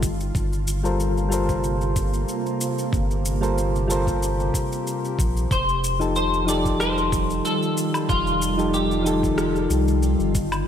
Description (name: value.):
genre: sunset chillout.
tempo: 93 BPM.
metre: 4/4.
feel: swing 54% on 16ths.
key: unclear.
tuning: A4 = 440 Hz.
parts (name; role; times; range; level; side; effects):
ethereal airy pad; sustained chords; 0.0-10.7 s; C3 to G4; -28 LUFS; equal; ensemble chorus, built-in reverb.
warm sub bass; bass; 0.0-10.6 s; F1 to C2; -25 LUFS; equal; none.
electronic kick drum; drums; 0.0-10.5 s; none; -26 LUFS; equal; overdrive.
electronic shaker, rim click and woodblock; drums; 0.0-10.6 s; none; -32 LUFS; left 1 dB; overdrive, gated reverb.
soft electric-piano-like synth keys; accompaniment; 0.8-10.3 s; F3 to C5; -25 LUFS; moving between left 5 dB and right 5 dB; chorus, auto-pan, low-pass filter, digital delay.
semi-hollow electric guitar; melody; 5.5-10.3 s; F4 to D5; -25 LUFS; left 2 dB; analog chorus, ping-pong delay.
room: moderate lush hall reverb, RT60 2.1 s.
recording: bright 1980s-style digital production.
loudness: -20 LUFS.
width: side -9 dB against mid.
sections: 0.0-10.7 A section.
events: none.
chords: 0.0 Gm11; 5.5 F9.